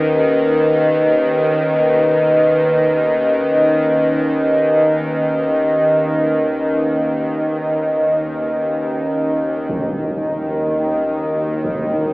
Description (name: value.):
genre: dark ambient drone.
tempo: free time.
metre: none.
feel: none.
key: unclear.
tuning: A4 = 440 Hz.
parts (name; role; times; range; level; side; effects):
dark analog pad; sustained chords; 0.0-12.1 s; D#3 to Eb5; -16 LUFS; equal; lush chorus.
bowed-like drone; drone; 0.0-12.1 s; Eb2 to Eb3; -19 LUFS; equal; built-in reverb.
impact; percussion; 9.7-11.8 s; none; -27 LUFS; equal; low-pass filter on sfx.
room: wet huge ambient reverb, RT60 7.7 s.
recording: AM radio sound.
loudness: -14 LUFS.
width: side -22 dB against mid.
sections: 0.0-9.7 A section; 9.7-12.1 B section.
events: none.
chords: 0.0 Badd9/D#; 9.7 Ebm7.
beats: free time.